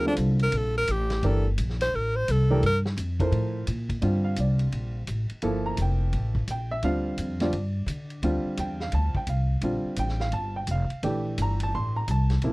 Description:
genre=modal jazz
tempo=171 BPM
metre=4/4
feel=swing 64% on 8ths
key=G dorian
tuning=A4 = 438 Hz
part: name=breathy tenor saxophone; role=melody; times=0.0-2.8 s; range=D4 to C5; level=-26 LUFS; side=equal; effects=none
part: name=warm baby grand piano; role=accompaniment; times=0.0-12.5 s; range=C3 to C6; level=-29 LUFS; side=right 1 dB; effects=none
part: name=upright bass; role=bass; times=0.0-12.5 s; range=F1 to D3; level=-26 LUFS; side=equal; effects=none
part: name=vintage drum kit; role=drums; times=0.2-12.5 s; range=hi-hat, kick drum, ride cymbal, snare drum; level=-37 LUFS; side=equal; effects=none
room=little or no reverb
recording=dry, close 1970s-style studio recording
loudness=-24 LUFS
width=side -23 dB against mid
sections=0.0-4.0 A section; 4.0-12.5 A section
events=tenor saxophone solo 0.0-4.0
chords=0.0 Gm11

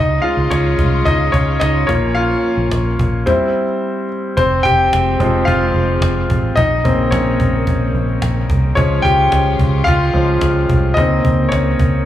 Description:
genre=piano-driven pop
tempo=109 BPM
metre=4/4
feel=straight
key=F minor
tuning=A4 = 440 Hz
part: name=clear concert grand piano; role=accompaniment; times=0.0-12.1 s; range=Db3 to G5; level=-16 LUFS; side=left 1 dB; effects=slapback echo
part: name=warm studio string section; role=sustained chords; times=0.0-12.1 s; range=Db3 to F4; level=-28 LUFS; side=right 1 dB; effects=none
part: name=vintage muted fingered electric bass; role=bass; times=0.0-12.0 s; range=F1 to Db2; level=-17 LUFS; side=equal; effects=none
part: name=cajon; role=drums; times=0.2-11.9 s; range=none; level=-23 LUFS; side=right 1 dB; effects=none
room=light reverb, small room ambience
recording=live gig heard through the venue's PA, club reverb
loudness=-13 LUFS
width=side -12 dB against mid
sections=0.0-4.4 A section; 4.4-12.1 B section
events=grand piano solo 0.0-4.4, 4.4-12.1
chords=0.0 Db; 1.9 Bbm; 3.3 C; 4.4 Fm; 6.6 Bbmadd9; 8.8 Db; 11.0 Bbmadd9/Db

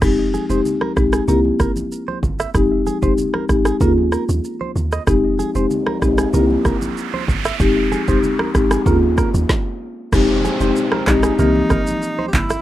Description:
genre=afrobeats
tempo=95 BPM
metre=4/4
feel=straight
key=F minor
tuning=A4 = 443 Hz
part: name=marimba with soft mallets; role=accompaniment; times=0.0-12.6 s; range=E3 to Ab4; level=-18 LUFS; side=left 2 dB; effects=none
part: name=deep log drum bass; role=bass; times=0.0-12.6 s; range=F1 to Eb2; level=-20 LUFS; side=right 1 dB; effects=none
part: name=afro-pop drum kit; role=drums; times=0.0-12.6 s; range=crash cymbal, handclaps, kick drum, rim click, shaker, snare drum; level=-21 LUFS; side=right 1 dB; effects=none
part: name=direct-recorded clean electric guitar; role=riff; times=0.3-12.6 s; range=Ab4 to E5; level=-28 LUFS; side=right 7 dB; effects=none
part: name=congas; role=percussion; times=0.3-12.5 s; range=none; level=-31 LUFS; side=right 1 dB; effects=none
part: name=noise sweep and downlifter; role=sound effects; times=5.6-12.6 s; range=none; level=-28 LUFS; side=right 2 dB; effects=none
part: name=breathy tenor saxophone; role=melody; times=10.1-12.6 s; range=C4 to G4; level=-25 LUFS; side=right 1 dB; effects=none
room=little or no reverb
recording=rough home demo mix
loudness=-15 LUFS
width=side -13 dB against mid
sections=0.0-10.1 A section; 10.1-12.6 B section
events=noise sweep 5.6-10.1; stop 9.5-10.1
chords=0.0 Fm7; 1.3 C7; 2.5 Fm7; 3.8 Eb7sus4; 5.1 Fm7; 6.3 C7; 7.6 Fm7; 8.9 Eb7sus4; 10.1 Fm7; 11.4 C7

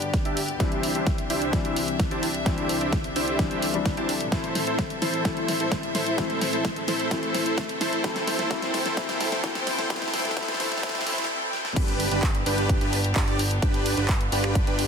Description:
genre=EDM, festival progressive house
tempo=129 BPM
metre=4/4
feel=straight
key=unclear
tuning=A4 = 442 Hz
part: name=felt-muted upright piano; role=accompaniment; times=0.0-11.8 s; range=D3 to E4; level=-32 LUFS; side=left 6 dB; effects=sidechain pumping, dub echo
part: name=rich chamber string section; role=sustained chords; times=0.0-14.9 s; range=C2 to G5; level=-33 LUFS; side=left 1 dB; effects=sidechain pumping
part: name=big-room dance drum kit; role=drums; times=0.0-14.9 s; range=crash cymbal, finger snaps, handclaps, hi-hat, snare drum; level=-30 LUFS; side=right 1 dB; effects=none
part: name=riser and swell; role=sound effects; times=2.4-11.8 s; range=none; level=-38 LUFS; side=right 3 dB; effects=none
part: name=electronic kick drum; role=drums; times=0.1-14.6 s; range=none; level=-26 LUFS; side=equal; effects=none
part: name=dense compressed supersaw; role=riff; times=0.3-14.8 s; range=D4 to A5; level=-27 LUFS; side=right 1 dB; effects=sidechain pumping, low-pass filter, dub echo
part: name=fat analog bass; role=bass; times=11.8-14.9 s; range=G1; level=-28 LUFS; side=equal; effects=sidechain pumping
room=light reverb, digital ambience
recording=dense, heavily limited modern master, high-pass filter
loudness=-23 LUFS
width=side -6 dB against mid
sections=0.0-11.8 A section; 11.8-14.9 B section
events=build-up 0.0-11.8; drum fill 0.0-11.3, 11.5; filter sweep on supersaw synth 0.0-11.8; filter sweep 0.0-11.8; swell 10.8-11.8; drop 11.8-14.9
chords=0.0 G; 0.6 Cadd9; 4.3 Am; 8.0 Fadd9; 11.8 G

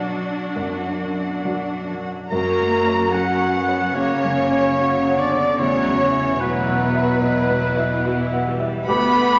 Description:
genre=cinematic, emotional film score for orchestra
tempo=73 BPM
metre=4/4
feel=rubato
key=unclear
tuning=A4 = 437 Hz
part: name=rich studio violin section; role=second line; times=0.0-9.4 s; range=F#4 to B5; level=-33 LUFS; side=equal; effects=none
part: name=clear studio viola section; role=accompaniment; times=0.0-9.4 s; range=E3 to F#5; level=-33 LUFS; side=equal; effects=none
part: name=felt-muted upright piano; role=accompaniment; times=0.0-9.4 s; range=B1 to F#5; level=-29 LUFS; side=equal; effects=none
part: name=concert harp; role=arpeggios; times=0.0-9.4 s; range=F#2 to E6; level=-36 LUFS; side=equal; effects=none
part: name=rich studio cello section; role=bass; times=0.0-9.4 s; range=B2 to D4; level=-28 LUFS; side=equal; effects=none
part: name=rich studio violin section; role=melody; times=2.3-9.4 s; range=B4 to B5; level=-31 LUFS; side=equal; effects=none
part: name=mellow clarinet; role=second line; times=2.3-9.4 s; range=F#3 to G4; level=-28 LUFS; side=equal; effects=none
part: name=silver concert flute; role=second line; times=2.3-9.4 s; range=B4 to B5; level=-28 LUFS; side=equal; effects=none
part: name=warm oboe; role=second line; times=2.3-9.4 s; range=B4 to B5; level=-27 LUFS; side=equal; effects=none
part: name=mellow French horn section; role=sustained chords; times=2.3-9.4 s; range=B3 to B4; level=-26 LUFS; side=equal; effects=none
part: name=rich studio double bass section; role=bass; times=2.3-9.4 s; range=D2 to F#2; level=-35 LUFS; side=equal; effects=none
room=wet scoring stage reverb, RT60 1.8 s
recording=nothing above 7.5 kHz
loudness=-20 LUFS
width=mono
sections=0.0-2.3 A section; 2.3-9.4 A section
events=none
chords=0.0 Bm; 2.3 F#; 5.6 Esus2; 8.9 D

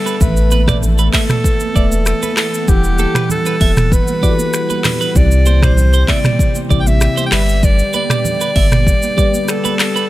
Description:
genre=afrobeats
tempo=97 BPM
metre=4/4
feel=straight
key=unclear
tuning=A4 = 441 Hz
part: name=breathy alto saxophone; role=melody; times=0.0-10.1 s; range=G4 to G5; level=-20 LUFS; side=equal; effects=none
part: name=mellow tine electric piano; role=accompaniment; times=0.0-10.1 s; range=C3 to F#5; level=-22 LUFS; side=left 4 dB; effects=none
part: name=warm analog pad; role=sustained chords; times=0.0-10.1 s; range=D3 to F#5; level=-25 LUFS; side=right 4 dB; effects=chorus
part: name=electric guitar at the edge of break-up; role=riff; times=0.1-10.0 s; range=A4 to E5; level=-24 LUFS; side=right 7 dB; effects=none
part: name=afro-pop drum kit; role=drums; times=0.1-10.1 s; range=finger snaps, handclaps, hi-hat, kick drum, rim click, shaker, toms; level=-15 LUFS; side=equal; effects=none
part: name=warm sub bass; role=bass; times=0.2-8.9 s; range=E1 to C2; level=-13 LUFS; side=equal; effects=none
part: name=congas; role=percussion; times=0.2-9.8 s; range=none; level=-26 LUFS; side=right 4 dB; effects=none
room=little or no reverb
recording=none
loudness=-11 LUFS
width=side -16 dB against mid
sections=0.0-10.1 A section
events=none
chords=0.2 Asus2; 2.7 Emadd9; 5.2 C; 7.3 G

